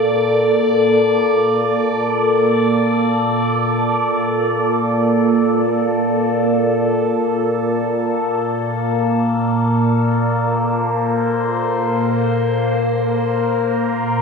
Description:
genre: ambient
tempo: free time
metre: none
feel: none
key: Bb major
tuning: A4 = 440 Hz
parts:
  - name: evolving wavetable pad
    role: solo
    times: 0.0-14.2 s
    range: Bb2 to D5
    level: -15 LUFS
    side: equal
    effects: phaser, built-in reverb
room: wet concert hall reverb, RT60 2.3 s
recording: none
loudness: -15 LUFS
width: side -5 dB against mid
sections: 0.0-14.2 A section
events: none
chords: 0.0 Bbmaj7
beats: free time

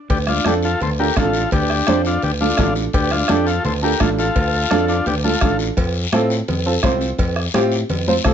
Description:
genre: latin, cumbia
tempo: 169 BPM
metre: 4/4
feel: straight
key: D minor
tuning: A4 = 440 Hz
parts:
  - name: combo organ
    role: melody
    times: 0.1-5.6 s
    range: D4 to C5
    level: -21 LUFS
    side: left 3 dB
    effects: plate reverb
  - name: fingered electric bass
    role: bass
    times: 0.1-8.3 s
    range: A1 to A2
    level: -22 LUFS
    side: equal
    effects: none
  - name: bombo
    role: percussion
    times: 0.1-8.3 s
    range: none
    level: -21 LUFS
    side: equal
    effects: none
  - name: congas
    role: percussion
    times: 0.1-8.3 s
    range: none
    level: -25 LUFS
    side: left 1 dB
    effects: none
  - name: cowbell and timbales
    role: percussion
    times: 0.1-8.1 s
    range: none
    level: -28 LUFS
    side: right 4 dB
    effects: none
  - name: guiro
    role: percussion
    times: 0.1-8.3 s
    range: none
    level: -28 LUFS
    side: left 6 dB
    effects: none
  - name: warm upright piano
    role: accompaniment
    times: 0.5-8.3 s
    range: C4 to C5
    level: -20 LUFS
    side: right 3 dB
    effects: none
room: light reverb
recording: nothing above 7.9 kHz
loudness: -16 LUFS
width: side -8 dB against mid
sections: 0.1-8.3 A section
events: none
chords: 0.1 Dm; 5.8 F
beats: | 0.10 0.46 0.81 1.17 | 1.52 1.87 2.23 2.58 | 2.94 3.29 3.65 4.00 | 4.36 4.71 5.06 5.42 | 5.77 6.12 6.48 6.83 | 7.18 7.54 7.89 8.25

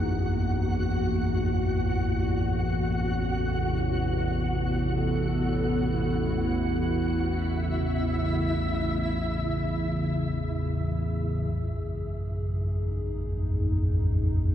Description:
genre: dark ambient drone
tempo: 56 BPM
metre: 4/4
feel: straight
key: unclear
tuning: A4 = 441 Hz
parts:
  - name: dark analog pad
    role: sustained chords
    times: 0.0-14.5 s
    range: F#2 to A4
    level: -29 LUFS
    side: equal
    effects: chorus
  - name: analog drone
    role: drone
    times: 0.0-14.5 s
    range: A1 to E2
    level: -28 LUFS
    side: equal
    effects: chorus
  - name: flickering grainy texture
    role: texture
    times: 0.0-11.5 s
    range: E4 to F#5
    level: -33 LUFS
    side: equal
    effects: built-in reverb
room: wet cathedral reverb, RT60 5.9 s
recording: none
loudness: -25 LUFS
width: side -10 dB against mid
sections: 0.0-11.5 A section; 11.5-14.5 B section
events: none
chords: 0.0 F#sus2; 3.0 C; 7.2 C#5; 11.5 F#sus2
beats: 0.82 1.89 | 2.96 4.03 5.10 6.17 | 7.25 8.32 9.39 10.46 | 11.53 12.60 13.67

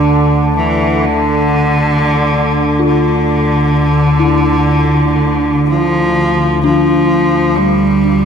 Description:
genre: dark ambient drone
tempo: 64 BPM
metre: 4/4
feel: straight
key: D minor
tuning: A4 = 440 Hz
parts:
  - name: clear cello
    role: melody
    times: 0.0-8.2 s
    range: D3 to G3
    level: -12 LUFS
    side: equal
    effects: analog delay
  - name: deep dark ambient pad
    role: sustained chords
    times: 0.0-6.7 s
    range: D4 to A5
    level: -30 LUFS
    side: left 2 dB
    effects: none
  - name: dark detuned synth bell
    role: arpeggios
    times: 0.0-8.2 s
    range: D4 to F4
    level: -19 LUFS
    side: left 5 dB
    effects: chorus, analog delay
  - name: analog drone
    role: drone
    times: 0.0-8.2 s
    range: D2 to D3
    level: -15 LUFS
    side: right 1 dB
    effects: chorus
  - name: wind-like tuned noise texture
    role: texture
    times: 0.0-8.2 s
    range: D4 to D5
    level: -30 LUFS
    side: right 6 dB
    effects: none
room: wet plate reverb, RT60 3.0 s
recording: echo-heavy mix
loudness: -10 LUFS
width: side -7 dB against mid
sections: 0.0-6.6 A section; 6.6-8.2 B section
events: none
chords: 0.0 Dmadd9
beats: 0.09 1.01 1.93 | 2.86 3.79 4.73 5.69 | 6.64 7.58

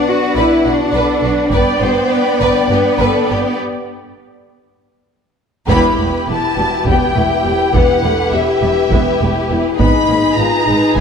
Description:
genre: cinematic, epic orchestral film score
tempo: 205 BPM (eighths)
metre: 7/8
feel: straight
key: E minor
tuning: A4 = 440 Hz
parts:
  - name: rich symphonic violin section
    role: melody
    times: 0.0-11.0 s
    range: E5 to B5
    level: -20 LUFS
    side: left 3 dB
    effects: none
  - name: rich symphonic violin section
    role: second line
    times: 0.0-11.0 s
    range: F#4 to D5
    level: -20 LUFS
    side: left 1 dB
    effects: none
  - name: rich studio viola section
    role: accompaniment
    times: 0.0-11.0 s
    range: G3 to D5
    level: -20 LUFS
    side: right 1 dB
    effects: none
  - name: mellow French horn section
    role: sustained chords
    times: 0.0-11.0 s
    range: B3 to B4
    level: -18 LUFS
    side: left 4 dB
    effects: none
  - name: rich symphonic cello section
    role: bass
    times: 0.0-11.0 s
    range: E2 to F#4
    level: -20 LUFS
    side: right 2 dB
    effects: none
  - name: rich symphonic double bass section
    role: bass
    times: 0.4-11.0 s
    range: E1 to B1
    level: -21 LUFS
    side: right 3 dB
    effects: none
  - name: taiko ensemble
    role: drums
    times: 1.5-11.0 s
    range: none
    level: -20 LUFS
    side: right 1 dB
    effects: none
room: wet scoring stage reverb, RT60 1.8 s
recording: none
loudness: -12 LUFS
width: side -6 dB against mid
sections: 0.0-5.7 A section; 5.7-11.0 B section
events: break 3.6-5.7; band accent 5.7-6.3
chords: 0.0 Bm; 1.5 G; 3.6 N.C.; 5.7 Em; 9.8 G#m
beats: 0.08 0.37 0.66 0.95 1.24 | 1.53 1.82 2.12 2.41 2.70 3.00 3.29 | 3.59 3.89 4.19 4.49 4.79 5.09 5.39 | 5.69 5.99 6.28 6.57 6.87 7.16 7.46 | 7.75 8.04 8.33 8.63 8.92 9.21 9.51 | 9.80 10.09 10.38 10.68 10.97

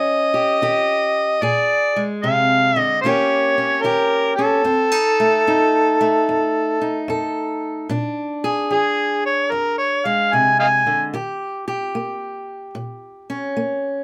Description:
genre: acoustic country blues, solo or duo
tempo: 74 BPM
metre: 4/4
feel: swing 66% on 8ths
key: unclear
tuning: A4 = 440 Hz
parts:
  - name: overdriven harmonica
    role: melody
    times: 0.0-11.0 s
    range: Ab4 to Ab5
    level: -19 LUFS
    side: equal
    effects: none
  - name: fingerpicked steel-string acoustic guitar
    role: accompaniment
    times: 0.0-14.0 s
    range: F2 to A4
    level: -25 LUFS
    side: equal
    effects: none
room: light reverb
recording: none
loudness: -19 LUFS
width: mono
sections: 0.0-7.9 A section; 7.9-14.0 B section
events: harmonica solo 7.9-14.0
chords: 0.0 Eb7; 1.4 Bb7; 3.0 Eb7; 4.7 F7; 7.9 Bb7; 11.1 Eb7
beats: 0.61 | 1.42 2.23 3.04 3.85 | 4.66 5.47 6.28 7.09 | 7.90 8.71 9.52 10.32 | 11.13 11.94 12.75 13.56

